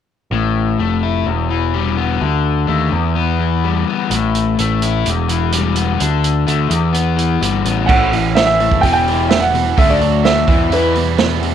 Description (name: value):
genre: indie rock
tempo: 127 BPM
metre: 4/4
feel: straight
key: E minor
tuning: A4 = 440 Hz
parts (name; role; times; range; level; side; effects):
- overdriven electric guitar; riff; 0.3-11.5 s; E2 to E4; -18 LUFS; left 10 dB; none
- growling picked electric bass; bass; 0.3-11.5 s; E1 to E2; -18 LUFS; right 2 dB; overdrive
- vintage drum kit; drums; 4.1-11.5 s; crash cymbal, hi-hat, kick drum, snare drum; -18 LUFS; right 4 dB; none
- warm upright piano; melody; 7.9-11.4 s; B4 to G5; -16 LUFS; right 2 dB; none
- overdriven electric guitar; riff; 7.9-11.5 s; A2 to E4; -22 LUFS; right 14 dB; wide subtle chorus
room: small room ambience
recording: 1960s-style stereo with parts hard left and right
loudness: -13 LUFS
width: side -9 dB against mid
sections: 0.3-7.9 A section; 7.9-11.5 B section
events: none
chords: 0.3 A5; 1.3 Em; 2.2 D5; 2.9 Em; 4.1 A5; 5.1 Em; 6.0 D5; 6.7 Em; 7.9 A5; 8.8 Em; 9.8 D; 10.5 Em